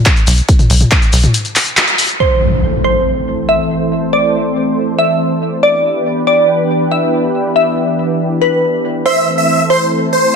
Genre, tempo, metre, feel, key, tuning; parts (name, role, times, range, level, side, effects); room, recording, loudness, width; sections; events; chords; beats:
uplifting trance; 140 BPM; 4/4; straight; A minor; A4 = 440 Hz
big-room dance drum kit; drums; 0.1-2.2 s; handclaps, hi-hat, toms; -13 LUFS; left 1 dB; sidechain pumping on hats, low-pass filter on hats, sidechain pumping on toms, low-pass filter on toms, low-pass filter on snare
electronic kick drum; drums; 0.1-1.0 s; -10 LUFS; equal
maracas; percussion; 0.1-2.2 s; -21 LUFS; left 3 dB
tight sequencer bass; bass; 0.3-1.3 s; B1; -10 LUFS; equal; tube saturation, sidechain pumping
glassy wavetable pluck; second line; 2.2-10.3 s; B4 to E5; -14 LUFS; equal; chorus, dub echo
analog string pad; sustained chords; 2.2-10.4 s; E3 to C5; -16 LUFS; right 1 dB; ensemble chorus, sidechain pumping
impact; sound effects; 2.2-3.9 s; -17 LUFS; equal
big supersaw lead; melody; 9.1-10.4 s; C5 to E5; -13 LUFS; equal; sidechain pumping, ping-pong delay
moderate lush hall reverb, RT60 2.6 s; -11 LUFS; side -6 dB against mid
0.0-2.2 A section; 2.2-10.4 B section
break 1.3-2.2; band accent 1.8; impact 2.2-3.9; filter sweep on analog synth pad 2.2-10.4
0.0 N.C.; 2.2 Am; 5.6 Em7; 9.1 Am
0.06 | 0.49 0.92 1.34 1.77 | 2.20 2.63 3.06 3.49 | 3.92 4.34 4.77 5.20 | 5.63 6.06 6.49 6.92 | 7.34 7.77 8.20 8.63 | 9.06 9.49 9.91 10.34